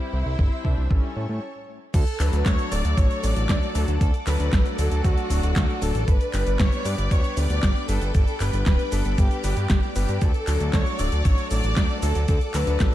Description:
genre	italo disco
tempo	116 BPM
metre	4/4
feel	straight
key	D major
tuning	A4 = 439 Hz
part	rich studio violin section	melody	0.0-12.9 s	C#4 to D5	-30 LUFS	equal	ping-pong delay
part	string machine, full ensemble	sustained chords	0.0-12.9 s	A4 to E6	-35 LUFS	equal	ensemble chorus
part	clear electric grand piano	stabs	0.0-12.9 s	F#3 to C5	-32 LUFS	left 4 dB	low-pass filter
part	fat analog bass	bass	0.1-12.9 s	D1 to A2	-24 LUFS	equal	none
part	electronic kick drum	drums	0.4-12.9 s	none	-21 LUFS	equal	none
part	house drum kit	drums	1.9-12.9 s	cabasa, crash cymbal, handclaps, hi-hat, snare drum	-30 LUFS	equal	none
room	light reverb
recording	dark, warm production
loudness	-20 LUFS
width	side -14 dB against mid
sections	0.0-1.9 A section; 1.9-12.9 B section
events	stop 1.4-1.9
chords	0.0 C; 0.9 A7; 1.9 D; 6.1 G; 10.2 D

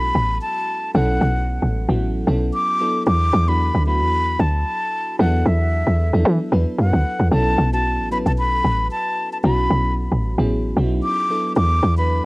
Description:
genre	amapiano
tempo	113 BPM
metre	4/4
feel	swing 55% on 16ths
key	B minor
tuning	A4 = 440 Hz
part	breathy concert flute	melody	0.0-12.3 s	E5 to D6	-22 LUFS	equal	cassette tape, analog delay
part	bell-like FM electric piano	accompaniment	0.0-12.3 s	F#3 to B4	-25 LUFS	equal	chorus, tremolo, cassette tape
part	woody log drum bass	bass	0.0-12.2 s	A1 to E3	-18 LUFS	equal	none
room	little or no reverb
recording	home recording on cassette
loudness	-17 LUFS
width	side -24 dB against mid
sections	0.0-12.3 A section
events	none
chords	0.0 B9sus4; 2.8 E9sus4; 7.3 B9sus4; 11.3 E9sus4

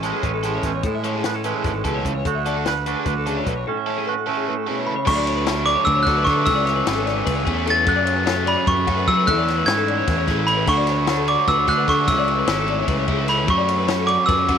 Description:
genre	math rock and midwest emo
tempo	299 BPM (eighths)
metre	7/8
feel	straight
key	A major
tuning	A4 = 436 Hz
part	twangy electric guitar	accompaniment	0.0-5.1 s	E2 to B4	-25 LUFS	right 14 dB	none
part	twelve-string electric guitar	arpeggios	0.0-14.6 s	F#4 to E5	-27 LUFS	left 12 dB	slapback echo
part	overdriven electric guitar	riff	0.0-14.6 s	F#2 to A4	-25 LUFS	right 1 dB	none
part	fuzz picked electric bass	bass	0.0-14.6 s	G#1 to F#3	-25 LUFS	equal	overdrive
part	compact cocktail drum kit	drums	0.0-14.6 s	crash cymbal, hi-hat, kick drum, ride cymbal, snare drum	-26 LUFS	left 3 dB	none
part	glockenspiel with hard plastic mallets	melody	4.9-14.6 s	B5 to A6	-20 LUFS	right 1 dB	slapback echo
room	light reverb, small room ambience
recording	1960s-style stereo with parts hard left and right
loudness	-17 LUFS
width	side -8 dB against mid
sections	0.0-5.1 A section; 5.1-14.6 B section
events	none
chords	0.0 Amaj7; 2.3 D6; 3.7 A69; 5.1 Dmaj7; 6.5 Amaj7; 7.9 F#m; 9.3 Amaj7/E; 10.7 Dmaj7; 12.1 Amaj7; 13.5 F#m7

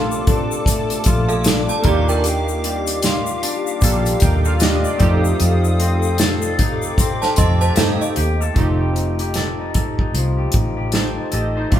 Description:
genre	indie pop, bedroom pop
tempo	76 BPM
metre	4/4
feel	swing 60% on 16ths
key	unclear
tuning	A4 = 440 Hz
part	electric guitar through a small old amp	accompaniment	0.0-11.8 s	Bb2 to A4	-24 LUFS	left 4 dB	warbly pitch drift
part	warm analog keys	accompaniment	0.0-11.8 s	A3 to G5	-25 LUFS	right 4 dB	chorus
part	hollow soft pad	sustained chords	0.0-8.5 s	G4 to Eb6	-27 LUFS	left 2 dB	ensemble chorus
part	vintage muted fingered electric bass	bass	0.0-11.8 s	F1 to G2	-20 LUFS	equal	none
part	egg shaker	percussion	0.1-8.6 s	none	-30 LUFS	left 6 dB	none
part	unplugged drum kit	drums	0.3-11.8 s	hi-hat, kick drum, snare drum	-19 LUFS	equal	none
part	synth chime	second line	1.3-8.5 s	A4 to C6	-23 LUFS	right 4 dB	ensemble chorus, tremolo
room	moderate large studio reverb, RT60 1.2 s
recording	band playing live in one room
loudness	-15 LUFS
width	side -11 dB against mid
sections	0.0-8.6 A section; 8.6-11.8 B section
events	none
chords	0.0 Bbmaj7; 1.8 Ebmaj9; 5.0 F7; 8.6 F9

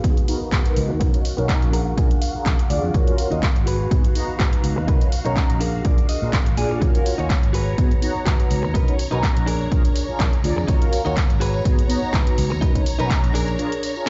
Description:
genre	filtered disco house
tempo	124 BPM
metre	4/4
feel	swing 54% on 16ths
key	unclear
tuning	A4 = 440 Hz
part	mellow synth brass	accompaniment	0.0-14.1 s	Cb4 to Bb5	-29 LUFS	equal	chorus, phaser, vintage 12-bit sampler grit, sidechain pumping, low-pass filter
part	phased string machine	sustained chords	0.0-14.1 s	Gb4 to Bb5	-36 LUFS	equal	ensemble chorus, phaser, sidechain pumping, low-pass filter
part	direct-recorded clean electric guitar	riff	0.0-14.1 s	Cb4 to Bb5	-31 LUFS	equal	sidechain pumping, low-pass filter
part	fingered electric bass	bass	0.0-13.6 s	Ab1 to Bb2	-27 LUFS	equal	sidechain pumping, low-pass filter
part	electronic kick drum	drums	0.0-13.2 s	none	-22 LUFS	equal	none
part	punchy analog drum machine	drums	0.0-14.1 s	handclaps, hi-hat, snare drum	-32 LUFS	equal	sidechain pumping on hats
part	tambourine	percussion	0.0-14.0 s	none	-44 LUFS	equal	none
room	digital ambience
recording	played on a big sound system in a bare room, large studio reverb, nothing above 7.7 kHz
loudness	-20 LUFS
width	mono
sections	0.0-14.1 A section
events	filter sweep 0.0-14.1; clean electric guitar fill 1.5-2.9, 5.4-6.8; break 13.6-14.1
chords	0.0 Abm7; 1.0 Bmaj7; 1.7 Bb7; 2.9 Ebm7; 3.7 Abm7; 4.9 Bmaj7; 5.6 Bb7; 6.8 Ebm7; 7.5 Abm7; 8.8 Bmaj7; 9.5 Bb7; 10.7 Ebm7; 11.4 Abm7; 12.6 Bmaj7; 13.3 Bb7

